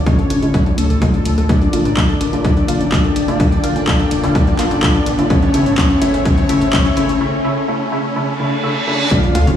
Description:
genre	melodic techno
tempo	126 BPM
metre	4/4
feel	straight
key	unclear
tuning	A4 = 441 Hz
part	lush unison pad	sustained chords	0.0-9.6 s	D3 to A5	-27 LUFS	left 1 dB	none
part	warbly dusty pluck	arpeggios	0.0-9.5 s	C#4 to F5	-25 LUFS	left 1 dB	chorus, sidechain pumping, dub echo
part	filtered dub chord stab	stabs	0.0-9.6 s	C#3 to F4	-23 LUFS	equal	chorus, cassette tape, sidechain pumping, dub echo
part	tight sequencer bass	bass	0.0-9.6 s	D1 to Bb2	-21 LUFS	equal	sidechain pumping
part	riser, reverse cymbal and impact	sound effects	0.0-9.6 s	none	-24 LUFS	right 1 dB	none
part	granular cloud pad	texture	0.0-9.6 s	A4 to A5	-30 LUFS	left 3 dB	built-in reverb, sidechain pumping
part	soft octave-layered synth lead	melody	0.1-9.6 s	A3 to F4	-19 LUFS	left 2 dB	chorus, sidechain pumping, digital delay
part	soft supersaw	second line	0.1-9.6 s	A4 to F5	-28 LUFS	equal	sidechain pumping, dub echo
part	electronic kick drum	drums	0.1-9.2 s	none	-15 LUFS	equal	overdrive
part	techno drum kit	drums	0.1-9.6 s	congas, handclaps, hi-hat	-24 LUFS	left 1 dB	overdrive, sidechain pumping on hats, high-pass filter on hats, sidechain pumping on perc, high-pass filter on perc, high-pass filter on snare
room	light reverb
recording	played on a big sound system in a bare room, large studio reverb, small room reverb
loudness	-13 LUFS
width	side -10 dB against mid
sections	0.0-9.1 A section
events	build-up 0.0-9.1; riser 0.0-9.1; filter sweep on soft synth lead 0.0-9.1; break 7.2-9.1; reverse cymbal 8.2-9.1; impact 9.1-9.6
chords	0.0 Dm; 1.5 Bb; 5.3 A

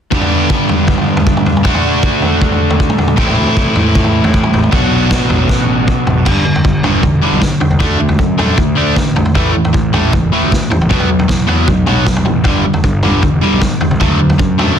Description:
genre	indie rock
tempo	155 BPM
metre	4/4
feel	straight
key	unclear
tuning	A4 = 440 Hz
part	crunchy overdriven guitar	riff	0.1-14.8 s	G2 to G4	-13 LUFS	equal	none
part	vintage drum kit	drums	0.1-14.7 s	crash cymbal, kick drum, snare drum, toms	-14 LUFS	equal	none
part	fuzz picked electric bass	bass	3.2-14.7 s	E1 to A2	-18 LUFS	equal	overdrive
room	light reverb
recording	dense, heavily limited modern master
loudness	-10 LUFS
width	side -8 dB against mid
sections	0.1-6.3 A section; 6.3-14.8 B section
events	drum fill 5.5-6.3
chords	0.1 G; 1.7 D; 3.2 Am; 4.7 Bm; 6.3 G5; 7.8 D; 9.4 A5; 10.9 B5; 12.5 G5; 14.0 D

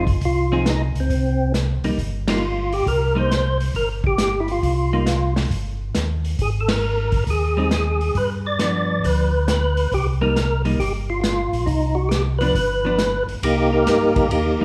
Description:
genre	soul jazz organ trio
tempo	136 BPM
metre	4/4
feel	swing 67% on 8ths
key	C minor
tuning	A4 = 440 Hz
part	percussive tonewheel organ	melody	0.0-14.6 s	Bb3 to D5	-24 LUFS	equal	slow rotary speaker, overdrive, chorus vibrato
part	vintage hollow-body jazz guitar	accompaniment	0.0-14.6 s	F3 to Ab4	-28 LUFS	equal	none
part	mellow tonewheel organ	bass	0.0-14.6 s	F1 to G2	-25 LUFS	equal	chorus vibrato, slow rotary speaker
part	vintage drum kit	drums	0.1-14.4 s	hi-hat, kick drum, ride cymbal, snare drum	-28 LUFS	equal	none
room	moderate recital hall reverb, RT60 1.5 s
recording	recorded in a church or concert hall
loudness	-20 LUFS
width	mono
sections	0.0-13.4 A section; 13.4-14.6 A section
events	band accent 2.2, 6.6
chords	0.0 F7(no3); 1.1 Cm; 6.4 Ab5; 8.2 G7; 9.9 Cm7; 12.6 G7; 13.4 Cm7

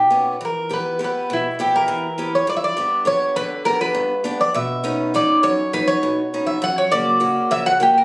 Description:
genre	greek folk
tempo	203 BPM (eighths)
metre	7/8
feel	straight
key	unclear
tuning	A4 = 441 Hz
part	Greek bouzouki	melody	0.0-8.0 s	E4 to F#5	-18 LUFS	equal	none
part	picked old ladder-braced acoustic guitar	accompaniment	0.0-8.0 s	F#2 to G4	-23 LUFS	equal	none
room	moderate studio reverb, RT60 0.5 s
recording	recorded on a phone in the room, studio reverb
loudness	-17 LUFS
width	side -26 dB against mid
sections	0.0-2.5 A section; 2.5-8.0 B section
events	none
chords	0.4 Em; 2.5 G; 4.6 Badd9; 6.6 F#

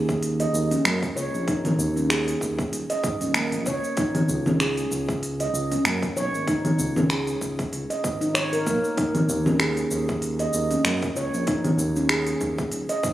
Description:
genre	organic downtempo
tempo	96 BPM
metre	4/4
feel	swing 56% on 16ths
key	Eb minor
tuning	A4 = 439 Hz
part	handpan	arpeggios	0.0-13.0 s	Bb3 to Eb5	-25 LUFS	right 1 dB	ping-pong delay
part	smooth synth bass	bass	0.0-13.1 s	Eb1 to Ab2	-28 LUFS	equal	sidechain pumping
part	electronic kick drum	drums	0.1-13.1 s	none	-30 LUFS	equal	overdrive
part	organic electronic drum kit	drums	0.1-13.1 s	congas, finger snaps, hi-hat, shaker	-26 LUFS	equal	overdrive
part	udu	percussion	1.8-12.5 s	none	-44 LUFS	left 2 dB	none
room	light reverb, digital ambience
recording	recorded on a phone in the room, studio ambience, compression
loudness	-22 LUFS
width	side -14 dB against mid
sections	0.0-13.1 A section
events	none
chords	0.0 Eb7(no3); 4.0 Dbsus2; 9.0 Eb7(no3)

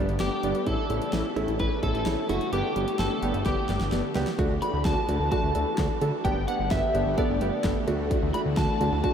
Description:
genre	synth-pop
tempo	129 BPM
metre	4/4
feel	straight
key	unclear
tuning	A4 = 436 Hz
part	clear concert grand piano	accompaniment	0.0-9.1 s	G3 to A4	-29 LUFS	right 2 dB	none
part	phased string machine	sustained chords	0.0-9.1 s	C#3 to G4	-33 LUFS	left 1 dB	ensemble chorus, phaser
part	fat analog bass	bass	0.0-9.0 s	F#1 to D3	-30 LUFS	equal	none
part	pop drum kit	drums	0.1-9.1 s	handclaps, hi-hat, kick drum, snare drum	-31 LUFS	equal	none
part	electric guitar at the edge of break-up	melody	0.2-9.1 s	F#4 to B5	-30 LUFS	left 1 dB	ensemble chorus, tape echo
room	wet huge ambient reverb, RT60 9.1 s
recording	dreamy mix soaked in reverb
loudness	-24 LUFS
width	side -8 dB against mid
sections	0.0-4.4 A section; 4.4-9.1 B section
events	drum fill 3.5-4.4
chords	0.0 Gadd9; 0.7 A; 2.5 Gadd9; 4.4 Dadd9; 6.2 Gadd9; 7.9 Dadd9

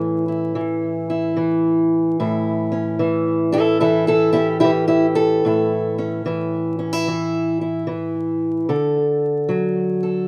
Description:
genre	acoustic country blues, solo or duo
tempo	74 BPM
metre	4/4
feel	swing 66% on 8ths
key	A mixolydian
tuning	A4 = 440 Hz
part	fingerpicked steel-string acoustic guitar	solo	0.0-10.3 s	A2 to A4	-20 LUFS	equal	slapback echo
room	little or no reverb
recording	recorded outdoors, with no room sound, vinyl crackle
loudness	-20 LUFS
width	mono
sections	0.0-10.3 A section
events	none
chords	0.0 A; 8.7 D

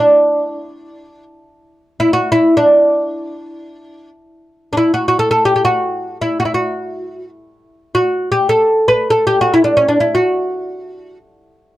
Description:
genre	Turkish makam ensemble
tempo	free time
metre	none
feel	none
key	D makam rast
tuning	A4 = 440 Hz
part	oud	solo	0.0-11.2 s	C#4 to B4	-12 LUFS	equal	none
room	moderate studio reverb, RT60 0.5 s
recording	dark, warm production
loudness	-12 LUFS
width	side -15 dB against mid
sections	0.0-4.4 A section; 4.4-11.8 A section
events	none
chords	none

